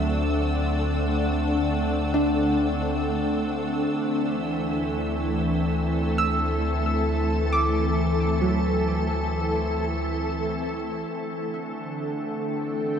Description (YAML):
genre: ambient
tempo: 67 BPM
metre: 4/4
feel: straight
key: unclear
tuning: A4 = 439 Hz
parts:
  - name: soft additive organ-like pad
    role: sustained chords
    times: 0.0-13.0 s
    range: D3 to G5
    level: -25 LUFS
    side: left 1 dB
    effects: ensemble chorus, built-in reverb
  - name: soft round pluck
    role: arpeggios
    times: 0.0-13.0 s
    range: F#3 to E6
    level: -30 LUFS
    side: right 1 dB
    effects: lush chorus, ping-pong delay
  - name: warm sub bass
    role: bass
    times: 0.0-11.0 s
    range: D2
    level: -28 LUFS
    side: equal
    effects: none
  - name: bright symphonic violin section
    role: texture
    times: 0.0-11.1 s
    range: E6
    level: -42 LUFS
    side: right 2 dB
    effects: none
  - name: overtone-sweeping drone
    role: drone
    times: 11.6-13.0 s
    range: D3 to A3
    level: -32 LUFS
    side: right 1 dB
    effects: chorus, built-in reverb
room: wet cathedral reverb, RT60 6.0 s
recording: none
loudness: -22 LUFS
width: side -8 dB against mid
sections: 0.0-11.1 A section; 11.1-13.0 B section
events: fade-out on violin section 0.0-11.1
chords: 0.0 Am/D; 11.1 D7sus4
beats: | 0.34 1.24 2.13 3.03 | 3.92 4.82 5.71 6.61 | 7.51 8.40 9.30 10.19 | 11.09 11.98 12.88